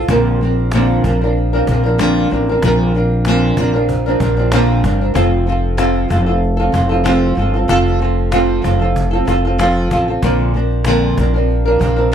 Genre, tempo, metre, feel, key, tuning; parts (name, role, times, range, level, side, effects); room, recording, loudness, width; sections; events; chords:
acoustic pop; 95 BPM; 4/4; swing 55% on 16ths; Bb major; A4 = 440 Hz
flamenco guitar; accompaniment; 0.0-12.1 s; Bb2 to Bb4; -15 LUFS; right 1 dB; double-tracked left and right
upright bass; bass; 0.0-12.1 s; F1 to Bb1; -16 LUFS; equal
cajon; drums; 0.1-12.1 s; -24 LUFS; equal
little or no reverb; -12 LUFS; side -8 dB against mid
0.1-12.1 A section
0.1 Bbadd9; 5.2 F; 10.2 Bbadd9